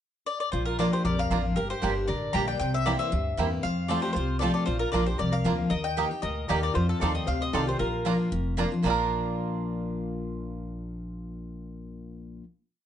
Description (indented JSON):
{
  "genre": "bluegrass",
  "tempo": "231 BPM",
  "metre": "4/4",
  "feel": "swing 54% on 8ths",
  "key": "Bb major",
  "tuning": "A4 = 440 Hz",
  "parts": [
    { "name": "mandolin", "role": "melody", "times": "0.3-8.5 s", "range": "A4 to Bb5", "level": "-31 LUFS", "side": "left 2 dB", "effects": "plate reverb" },
    { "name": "lap resonator guitar", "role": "second line", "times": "0.5-8.5 s", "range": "F4 to G5", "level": "-36 LUFS", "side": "left 4 dB", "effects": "none" },
    { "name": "picked steel-string acoustic guitar", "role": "accompaniment", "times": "0.5-12.4 s", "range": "F2 to G4", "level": "-30 LUFS", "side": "left 2 dB", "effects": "none" },
    { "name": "upright bass", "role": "bass", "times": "0.5-12.4 s", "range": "F1 to F2", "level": "-32 LUFS", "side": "right 1 dB", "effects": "none" },
    { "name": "bluegrass banjo", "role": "arpeggios", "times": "0.8-12.4 s", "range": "Bb3 to Bb4", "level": "-32 LUFS", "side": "right 7 dB", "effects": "none" },
    { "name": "mandolin", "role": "stabs", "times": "0.8-12.4 s", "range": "Bb3 to C6", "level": "-33 LUFS", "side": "right 6 dB", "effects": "none" }
  ],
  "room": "light reverb",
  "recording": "dark, warm production, nothing above 10.3 kHz",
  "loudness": "-25 LUFS",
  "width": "side -10 dB against mid",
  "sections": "0.0-0.5 pickup bar; 0.5-8.8 A section; 8.8-10.9 final chord",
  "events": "none",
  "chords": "0.0 N.C.; 0.5 Bb; 1.6 Gm; 2.6 C7; 3.6 F; 4.7 Bb; 5.7 Eb; 6.8 F7; 7.8 Bb"
}